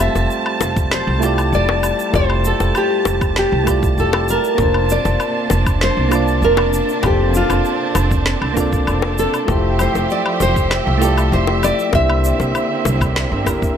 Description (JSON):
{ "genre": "sunset chillout", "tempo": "98 BPM", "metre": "4/4", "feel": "straight", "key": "F major", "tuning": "A4 = 440 Hz", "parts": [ { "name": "nylon-string guitar", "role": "melody", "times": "0.0-13.8 s", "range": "F4 to E5", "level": "-20 LUFS", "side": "left 1 dB", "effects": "ping-pong delay" }, { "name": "soft electric-piano-like synth keys", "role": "accompaniment", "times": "0.0-13.8 s", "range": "A3 to A5", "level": "-22 LUFS", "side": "moving between left 4 dB and right 7 dB", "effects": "chorus, auto-pan, digital delay" }, { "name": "rich studio string section", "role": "sustained chords", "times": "0.0-13.8 s", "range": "C3 to A5", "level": "-22 LUFS", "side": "right 3 dB", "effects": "none" }, { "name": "upright bass", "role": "bass", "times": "0.0-13.8 s", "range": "F1 to C2", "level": "-19 LUFS", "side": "equal", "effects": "none" }, { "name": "electronic shaker, woodblock and snare drum", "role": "drums", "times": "0.0-13.7 s", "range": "none", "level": "-24 LUFS", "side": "left 2 dB", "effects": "none" }, { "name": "bongos", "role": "percussion", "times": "0.2-13.6 s", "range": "none", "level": "-24 LUFS", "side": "left 8 dB", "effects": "none" }, { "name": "electronic kick drum", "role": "drums", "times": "0.8-13.7 s", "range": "none", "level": "-20 LUFS", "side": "equal", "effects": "none" } ], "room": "light reverb, studio reverb", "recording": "none", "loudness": "-14 LUFS", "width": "side -8 dB against mid", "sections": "0.0-13.8 A section", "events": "none", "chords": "0.0 Fmaj9; 4.6 Bbmaj9/F; 9.5 Fmaj9; 11.9 C9", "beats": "0.30 0.91 1.53 | 2.14 2.75 3.36 3.98 | 4.59 5.20 5.81 6.42 | 7.04 7.65 8.26 8.87 | 9.48 10.10 10.71 11.32 | 11.93 12.55 13.16 13.77" }